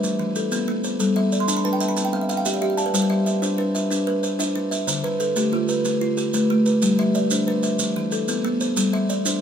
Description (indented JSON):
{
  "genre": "southern african traditional, mbira-style interlocking cycle",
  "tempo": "124 BPM (dotted quarters)",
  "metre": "12/8",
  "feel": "straight",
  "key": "G mixolydian",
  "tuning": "A4 = 437 Hz",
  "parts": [
    { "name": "buzzing kalimba", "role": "arpeggios", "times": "0.0-9.4 s", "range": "D3 to A5", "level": "-22 LUFS", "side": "left 2 dB", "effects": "none" },
    { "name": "kalimba", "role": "arpeggios", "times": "0.0-9.4 s", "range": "D3 to C6", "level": "-24 LUFS", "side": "right 4 dB", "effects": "none" },
    { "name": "maracas", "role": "percussion", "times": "0.0-9.4 s", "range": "none", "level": "-28 LUFS", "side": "right 5 dB", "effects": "none" }
  ],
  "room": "wet large studio reverb, RT60 1.2 s",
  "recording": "band playing live in one room",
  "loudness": "-19 LUFS",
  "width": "side -8 dB against mid",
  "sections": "0.0-9.4 A section",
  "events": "kalimba fill 1.2-2.9",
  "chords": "0.0 E5; 1.0 G; 2.0 C; 2.9 G; 4.9 Dm; 6.8 G; 7.8 E5; 8.8 G5"
}